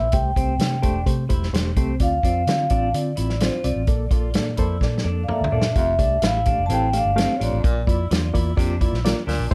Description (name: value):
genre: uptempo 1960s-style soul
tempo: 128 BPM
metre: 4/4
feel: straight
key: unclear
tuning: A4 = 440 Hz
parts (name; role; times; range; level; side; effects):
- vibraphone with soft mallets; melody; 0.0-8.3 s; C5 to A5; -27 LUFS; equal; plate reverb
- bright reed electric piano; accompaniment; 0.0-9.5 s; A3 to Bb5; -31 LUFS; equal; fast tremolo
- electric guitar through a small old amp; riff; 0.0-9.5 s; C4 to F4; -36 LUFS; equal; none
- vintage muted fingered electric bass; bass; 0.0-9.5 s; E1 to D3; -26 LUFS; equal; none
- natural country drum kit; drums; 0.1-9.5 s; hi-hat, kick drum, snare drum, toms; -25 LUFS; equal; none
- clear baritone saxophone; riff; 5.8-9.5 s; F2 to C3; -33 LUFS; equal; none
room: light reverb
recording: dark, warm production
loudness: -21 LUFS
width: mono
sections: 0.0-5.8 A section; 5.8-9.5 B section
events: drum fill 4.8-5.8; reed electric piano fill 5.1-5.8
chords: 0.1 Am7; 2.0 Dm7; 3.9 Bbmaj7; 5.8 Fadd9; 7.6 Bb